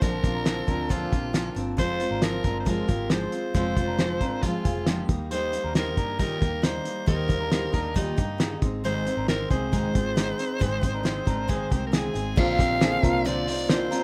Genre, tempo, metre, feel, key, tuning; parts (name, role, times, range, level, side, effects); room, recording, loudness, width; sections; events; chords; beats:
jangly indie pop; 136 BPM; 4/4; straight; Eb major; A4 = 440 Hz
raspy soprano saxophone; melody; 0.0-14.0 s; Eb4 to F5; -32 LUFS; equal
picked steel-string acoustic guitar; accompaniment; 0.0-14.0 s; Ab2 to F4; -32 LUFS; equal; plate reverb
electric guitar through a small old amp; arpeggios; 0.0-14.0 s; G3 to C5; -36 LUFS; equal; plate reverb
vintage muted picked electric bass; bass; 0.0-13.9 s; F1 to G2; -36 LUFS; equal
cloth-damped thuddy drum kit; drums; 0.0-14.0 s; crash cymbal, hi-hat, kick drum, snare drum; -28 LUFS; equal
warm upright piano; accompaniment; 12.4-14.0 s; D4 to D5; -37 LUFS; equal
light reverb; rough home demo mix; -26 LUFS; mono
0.0-12.4 A section; 12.4-14.0 B section
0.0 Bbadd9; 1.8 Fm; 5.1 Eb; 8.6 Ab; 12.4 Bbadd9
| 0.02 0.46 0.90 1.34 | 1.78 2.22 2.67 3.11 | 3.55 3.99 4.43 4.87 | 5.31 5.75 6.19 6.64 | 7.08 7.52 7.96 8.40 | 8.84 9.29 9.73 10.17 | 10.61 11.05 11.49 11.93 | 12.37 12.81 13.25 13.69